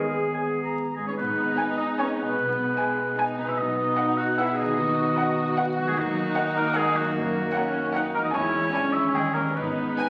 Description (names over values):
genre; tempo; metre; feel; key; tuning
cinematic, playful, whimsical film cue; 150 BPM; 3/4; straight; G# minor; A4 = 440 Hz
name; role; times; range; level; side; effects
bright clarinet; second line; 0.0-1.0 s; G#4; -36 LUFS; equal; none
hollow concert flute; second line; 0.0-0.9 s; G#4; -33 LUFS; equal; none
mellow French horn section; sustained chords; 0.0-10.1 s; G3 to G#4; -33 LUFS; equal; none
concert harp; arpeggios; 0.0-10.1 s; F#2 to G#4; -36 LUFS; equal; none
warm oboe; second line; 0.3-10.1 s; F#4 to A#5; -29 LUFS; equal; none
rich studio cello section; bass; 1.0-10.1 s; F#3 to F#4; -36 LUFS; equal; none
clear symphonic viola section; accompaniment; 1.2-10.1 s; G#3 to G#4; -33 LUFS; equal; none
warm chamber double bass section; bass; 1.2-9.9 s; G#1 to F#2; -41 LUFS; equal; none
rich chamber violin section; melody; 1.6-10.1 s; F#5 to G#5; -33 LUFS; equal; none
rich chamber violin section; second line; 1.6-10.1 s; B3 to D#5; -41 LUFS; equal; none
room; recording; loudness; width
wet recital hall reverb, RT60 1.4 s; very old 78 rpm record, vinyl crackle; -25 LUFS; mono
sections
0.0-1.2 A section; 1.2-10.1 B section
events
none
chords
0.0 G#m; 2.4 G#m/B; 3.6 B; 4.8 B/D#; 6.0 D#m; 7.2 D#m/F#; 8.3 C#m/E; 8.7 E7; 9.1 D#7; 9.6 G#m